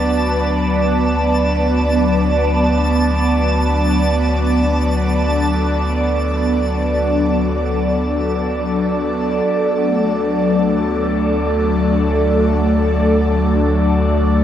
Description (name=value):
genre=ambient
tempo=free time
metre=none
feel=none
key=unclear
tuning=A4 = 440 Hz
part: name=airy breathy pad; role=sustained chords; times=0.0-14.4 s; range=F#3 to D5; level=-16 LUFS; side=equal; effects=chorus, phaser
part: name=warm sub bass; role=bass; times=0.0-14.4 s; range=D2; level=-20 LUFS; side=equal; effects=none
part: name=twinkling granular texture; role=texture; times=0.0-9.4 s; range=A5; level=-26 LUFS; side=equal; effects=built-in reverb
room=wet shimmer reverb, RT60 8.1 s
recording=none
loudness=-14 LUFS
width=side -10 dB against mid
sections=0.0-9.4 A section; 9.4-14.4 B section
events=none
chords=0.0 Bm/D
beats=free time